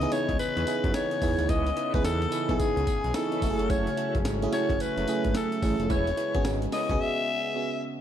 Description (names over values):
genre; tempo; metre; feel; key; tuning
R&B, new jack swing; 109 BPM; 4/4; swing 63% on 16ths; unclear; A4 = 442 Hz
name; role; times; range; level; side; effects
breathy alto saxophone; melody; 0.0-7.8 s; G#4 to E5; -30 LUFS; left 4 dB; tape echo
FM electric piano; accompaniment; 0.0-8.0 s; A3 to G#4; -30 LUFS; right 4 dB; chorus
sweeping resonant pad; sustained chords; 0.0-8.0 s; C#3 to D#5; -36 LUFS; equal; chorus, phaser
fat analog bass; bass; 0.0-7.0 s; E1 to F#2; -30 LUFS; equal; none
breakbeat sampler-style drum kit; drums; 0.0-7.0 s; hi-hat, kick drum, snare drum, tambourine; -31 LUFS; equal; none
tonewheel organ; stabs; 0.1-6.9 s; D#4 to C#5; -36 LUFS; right 2 dB; chorus vibrato, slow rotary speaker
room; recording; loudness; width
moderate echo chamber reverb, RT60 1.7 s; dark, warm production; -24 LUFS; side -10 dB against mid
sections
0.0-8.0 A section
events
silent gap 7.0-8.0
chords
0.0 C#m9; 3.4 F#m7; 5.9 E6